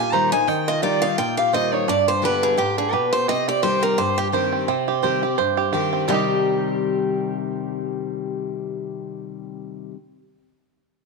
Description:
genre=bluegrass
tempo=171 BPM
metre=4/4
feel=swing 56% on 8ths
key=C minor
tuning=A4 = 438 Hz
part: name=picked steel-string acoustic guitar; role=melody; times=0.0-9.9 s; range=G4 to Bb5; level=-22 LUFS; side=right 1 dB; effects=none
part: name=picked steel-string acoustic guitar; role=accompaniment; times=0.0-10.0 s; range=G2 to G4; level=-25 LUFS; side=left 11 dB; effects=none
part: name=bluegrass banjo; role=arpeggios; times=0.0-10.0 s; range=G3 to C5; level=-24 LUFS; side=right 11 dB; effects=none
room=wet echo chamber reverb, RT60 1.8 s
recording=1960s-style stereo with parts hard left and right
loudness=-19 LUFS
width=side -3 dB against mid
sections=0.0-4.7 A section; 4.7-6.1 B section; 6.1-8.9 C section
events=none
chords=0.0 Ebadd9; 1.9 G; 3.3 Cm

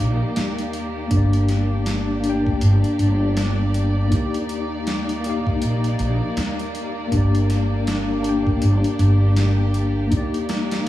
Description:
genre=trip hop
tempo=80 BPM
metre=4/4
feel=swing 60% on 16ths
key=G minor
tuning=A4 = 438 Hz
part: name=mellow tine electric piano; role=accompaniment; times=0.0-10.9 s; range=Bb3 to G5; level=-24 LUFS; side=left 2 dB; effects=medium stereo tremolo, harmonic tremolo, tape echo
part: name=dark studio violin section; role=sustained chords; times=0.0-10.9 s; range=Bb3 to D5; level=-28 LUFS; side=equal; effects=none
part: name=upright bass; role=bass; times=0.0-10.9 s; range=G1 to Eb2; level=-20 LUFS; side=equal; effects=none
part: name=boom bap sampler-style drum kit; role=drums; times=0.4-10.9 s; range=hi-hat, kick drum, snare drum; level=-26 LUFS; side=equal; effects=none
room=moderate cathedral reverb, RT60 4.7 s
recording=dreamy mix soaked in reverb, vinyl crackle, small room ambience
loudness=-18 LUFS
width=side -14 dB against mid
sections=0.0-10.9 A section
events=none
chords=0.0 Ebmaj7; 1.1 Gm; 4.1 Ebmaj7; 7.1 Gm; 10.1 Ebmaj7

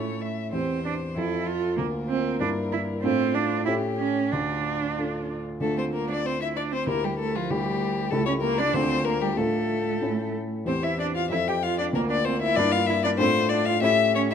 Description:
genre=quick classical-period movement for piano trio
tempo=95 BPM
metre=2/4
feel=straight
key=D minor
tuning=A4 = 441 Hz
part: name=rich violin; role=melody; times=0.0-14.3 s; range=F4 to G5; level=-28 LUFS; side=left 8 dB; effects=none
part: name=rich cello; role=second line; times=0.0-14.3 s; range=F3 to G4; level=-28 LUFS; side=right 6 dB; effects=none
part: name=dark baby grand piano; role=accompaniment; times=0.0-14.3 s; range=C#2 to Bb4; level=-27 LUFS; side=equal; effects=none
room=wet recital hall reverb, RT60 1.7 s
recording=close, detailed microphones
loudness=-23 LUFS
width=side -8 dB against mid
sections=0.0-5.6 A section; 5.6-14.3 B section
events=none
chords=0.0 A; 0.5 C/E; 1.2 F; 1.8 Bb/D; 2.4 Edim/G; 3.0 Dm/A; 3.7 A7; 4.3 Dm; 6.9 Em7b5/D; 8.1 A7/C#; 8.8 Dm; 9.4 Dm/A; 10.0 A; 10.7 C/E; 11.3 F; 12.0 Bb/D; 12.6 Edim/G; 13.2 Dm/A; 13.8 A7

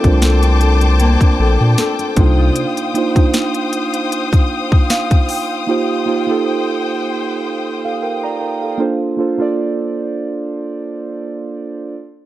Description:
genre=contemporary R&B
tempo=77 BPM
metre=4/4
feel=swing 54% on 16ths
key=Bb major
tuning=A4 = 440 Hz
part: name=muted felt-like synth keys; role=accompaniment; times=0.0-11.9 s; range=A3 to Bb5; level=-19 LUFS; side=right 4 dB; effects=chorus
part: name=warm studio string section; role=sustained chords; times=0.0-8.8 s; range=C5 to Eb6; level=-22 LUFS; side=left 5 dB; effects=none
part: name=nylon-string guitar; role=arpeggios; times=0.0-3.1 s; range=C3 to C5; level=-21 LUFS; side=left 3 dB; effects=tape echo
part: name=saturated sub bass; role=bass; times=0.0-2.5 s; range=Bb1 to Bb2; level=-12 LUFS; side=equal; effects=none
part: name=trap drum kit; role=drums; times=0.0-5.5 s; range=hi-hat, kick drum, snare drum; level=-14 LUFS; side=equal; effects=none
room=little or no reverb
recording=dark, warm production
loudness=-14 LUFS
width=side -14 dB against mid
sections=0.0-11.9 A section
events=synth keys fill 4.5-5.7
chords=0.0 Bbmaj9; 2.2 Cm11; 5.7 Eb69; 8.8 Bbmaj9

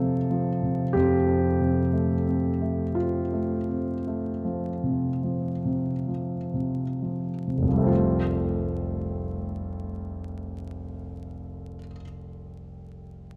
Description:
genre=classical, impressionist solo piano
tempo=21-31 BPM (dotted quarters)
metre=9/8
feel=rubato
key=F major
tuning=A4 = 440 Hz
part: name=clear grand piano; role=solo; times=0.0-13.4 s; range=F1 to A4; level=-28 LUFS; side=equal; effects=none
room=wet concert hall reverb, RT60 2.3 s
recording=dark, warm production, vinyl crackle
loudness=-27 LUFS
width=mono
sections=0.0-7.9 A section; 7.9-13.4 B section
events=slowing down 0.0-7.9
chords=0.0 Fadd9

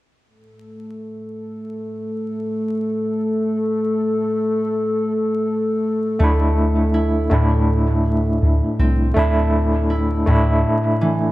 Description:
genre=trip hop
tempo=81 BPM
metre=4/4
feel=swing 58% on 16ths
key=unclear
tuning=A4 = 439 Hz
part: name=dark analog pad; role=sustained chords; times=0.3-10.6 s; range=A3 to A4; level=-22 LUFS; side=left 1 dB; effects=chorus
part: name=overdriven tine electric piano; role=accompaniment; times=6.2-11.3 s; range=A3 to E4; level=-19 LUFS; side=equal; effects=tremolo, tape echo
part: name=concert harp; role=arpeggios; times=6.2-11.3 s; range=A2 to E4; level=-23 LUFS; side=equal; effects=tape echo
part: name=soft 808-style bass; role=bass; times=6.2-10.6 s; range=C2 to D2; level=-18 LUFS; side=equal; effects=tube saturation
room=light reverb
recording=vinyl crackle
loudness=-16 LUFS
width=side -17 dB against mid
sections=0.3-11.3 A section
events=none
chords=0.3 N.C.; 6.2 Dsus2

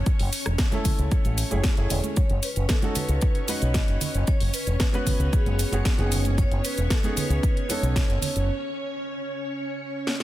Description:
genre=nu-disco, nu disco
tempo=114 BPM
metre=4/4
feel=straight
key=unclear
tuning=A4 = 439 Hz
part: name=warm grand piano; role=accompaniment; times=0.0-8.5 s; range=A3 to B4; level=-33 LUFS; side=right 1 dB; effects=dub echo
part: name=string machine, full ensemble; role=sustained chords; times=0.0-10.2 s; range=C#4 to C#5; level=-33 LUFS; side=equal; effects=ensemble chorus, sidechain pumping
part: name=fingered electric bass with an envelope filter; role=bass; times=0.0-8.5 s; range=E1 to C#2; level=-25 LUFS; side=equal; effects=none
part: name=electronic kick drum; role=drums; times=0.1-8.1 s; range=none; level=-23 LUFS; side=equal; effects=small room ambience
part: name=house drum kit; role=drums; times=0.1-10.2 s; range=hi-hat, rim click, shaker, snare drum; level=-30 LUFS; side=equal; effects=small room ambience
part: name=congas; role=percussion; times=0.7-8.3 s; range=none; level=-35 LUFS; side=right 6 dB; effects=none
part: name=vibraphone with medium mallets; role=melody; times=2.2-8.5 s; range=G#4 to D#5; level=-34 LUFS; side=left 1 dB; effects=dub echo
room=studio reverb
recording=dense, heavily limited modern master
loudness=-22 LUFS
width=side -14 dB against mid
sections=0.0-10.2 A section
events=break 8.5-10.2; drum fill 10.1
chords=0.1 F#m7 (rootless); 2.2 B7/F#; 4.3 E6 (rootless); 6.1 Amaj9#11; 8.5 N.C.

